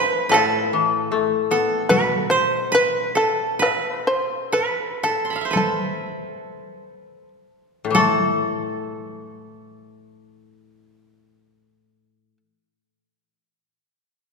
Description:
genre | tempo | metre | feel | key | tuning
japanese traditional, Japanese chamber music | 47-77 BPM | 4/4 | rubato | A hirajoshi | A4 = 439 Hz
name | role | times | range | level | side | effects
shamisen | melody | 0.0-12.4 s | A4 to C5 | -22 LUFS | left 1 dB | none
koto | second line | 0.0-12.4 s | A4 to C6 | -23 LUFS | right 4 dB | none
koto | accompaniment | 0.3-12.4 s | A2 to B3 | -23 LUFS | left 6 dB | none
solo taiko drums | percussion | 0.3-8.5 s | none | -27 LUFS | left 1 dB | none
room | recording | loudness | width
wet concert hall reverb, RT60 2.5 s | minimal, uncompressed stereo recording | -18 LUFS | side -4 dB against mid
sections
0.0-7.9 A section; 7.9-12.8 B section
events
slowing down 0.3-7.9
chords
none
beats
| 0.34 1.12 1.91 2.74 | 3.61 4.54 5.55 6.69 | 7.94 9.19 10.39 11.59

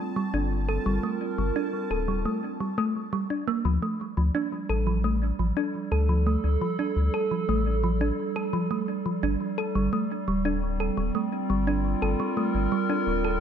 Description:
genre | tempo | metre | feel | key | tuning
IDM | 86 BPM | 4/4 | straight | G minor | A4 = 437 Hz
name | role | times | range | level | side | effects
warbly tape-like pad | sustained chords | 0.0-13.4 s | G3 to Bb4 | -29 LUFS | right 3 dB | chorus, built-in reverb, vintage 12-bit sampler grit
bubbling stepped-filter texture | texture | 0.0-2.3 s | A5 | -41 LUFS | equal | chorus, built-in reverb
thumb-piano-like synth pluck | arpeggios | 0.2-13.4 s | F3 to A4 | -28 LUFS | equal | chorus, digital delay
round analog bass | bass | 0.3-13.4 s | D1 to D2 | -26 LUFS | left 1 dB | none
room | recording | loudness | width
light reverb | none | -24 LUFS | side -8 dB against mid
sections
0.0-3.7 A section; 3.7-13.4 B section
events
none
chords
0.0 Gmadd9; 3.7 Dm; 9.2 Gmadd9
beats
0.16 | 0.86 1.56 2.26 2.95 | 3.65 4.35 5.05 5.74 | 6.44 7.14 7.84 8.54 | 9.23 9.93 10.63 11.33 | 12.02 12.72

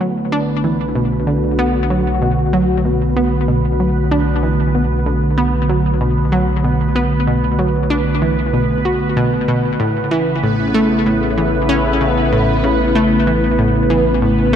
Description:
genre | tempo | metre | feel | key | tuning
ambient, sequencer-driven space music | 95 BPM | 4/4 | straight | B minor | A4 = 439 Hz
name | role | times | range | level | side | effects
sweeping resonant pad | sustained chords | 0.0-14.6 s | C#3 to B4 | -18 LUFS | right 1 dB | chorus
analog pluck | riff | 0.0-14.6 s | A2 to F#4 | -18 LUFS | equal | chorus, ping-pong delay
round analog bass | bass | 0.0-14.6 s | A1 to B1 | -21 LUFS | equal | none
bubbling stepped-filter texture | texture | 0.0-14.6 s | B3 to B4 | -24 LUFS | right 1 dB | chorus, built-in reverb
room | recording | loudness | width
moderate plate reverb, RT60 3.0 s | dark, warm production | -13 LUFS | side -9 dB against mid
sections
0.0-14.6 A section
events
none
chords
0.0 Bm7; 9.8 Aadd9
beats
0.32 0.95 1.59 | 2.22 2.85 3.48 4.11 | 4.74 5.38 6.01 6.64 | 7.27 7.90 8.53 9.16 | 9.80 10.43 11.06 11.69 | 12.32 12.95 13.59 14.22

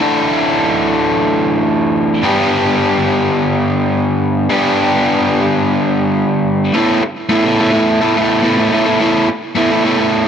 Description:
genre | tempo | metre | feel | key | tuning
rock | 107 BPM | 4/4 | straight | unclear | A4 = 440 Hz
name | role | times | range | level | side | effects
biting overdriven guitar | solo | 0.0-10.3 s | G2 to A4 | -12 LUFS | equal | digital delay
room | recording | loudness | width
light reverb | none | -12 LUFS | side -8 dB against mid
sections
0.0-6.7 A section; 6.7-10.3 B section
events
none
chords
0.0 Dsus2; 2.2 G; 6.7 Asus2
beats
0.55 1.11 1.68 | 2.24 2.80 3.37 3.93 | 4.49 5.05 5.61 6.17 | 6.74 7.30 7.86 8.42 | 8.98 9.54 10.11

